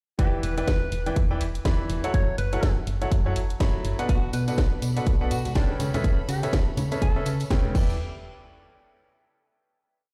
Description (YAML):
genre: piano house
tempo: 123 BPM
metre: 4/4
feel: swing 59% on 16ths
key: E dorian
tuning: A4 = 440 Hz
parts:
  - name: warm alto saxophone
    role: melody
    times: 0.2-7.4 s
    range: D4 to C#5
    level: -38 LUFS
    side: equal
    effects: dub echo
  - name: clear baby grand piano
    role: riff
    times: 0.2-7.9 s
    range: B2 to B5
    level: -33 LUFS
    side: equal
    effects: sidechain pumping, dub echo
  - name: solid FM bass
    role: bass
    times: 0.2-8.0 s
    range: E1 to C#3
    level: -30 LUFS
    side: equal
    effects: sidechain pumping
  - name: electronic kick drum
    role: drums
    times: 0.2-7.9 s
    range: none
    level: -26 LUFS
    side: equal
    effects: none
  - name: house drum kit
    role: drums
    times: 0.2-7.9 s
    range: crash cymbal, hi-hat, snare drum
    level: -37 LUFS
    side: equal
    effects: none
  - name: clear studio violin section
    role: sustained chords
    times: 4.1-8.0 s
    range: G4 to D6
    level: -44 LUFS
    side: equal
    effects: sidechain pumping
  - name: tambourine and congas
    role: percussion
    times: 4.1-8.0 s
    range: none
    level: -37 LUFS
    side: equal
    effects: none
room: small room ambience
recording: played on a big sound system in a bare room, large studio reverb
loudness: -25 LUFS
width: mono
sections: 0.2-8.0 drop; 8.0-9.9 final hit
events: drop 0.2-8.0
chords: 0.2 Em7; 2.1 F#m7; 4.1 Bm7; 5.8 Aadd9/C#; 7.7 Em7; 8.0 N.C.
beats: | 0.19 0.68 1.16 1.65 | 2.14 2.63 3.12 3.60 | 4.09 4.58 5.07 5.55 | 6.04 6.53 7.02 7.50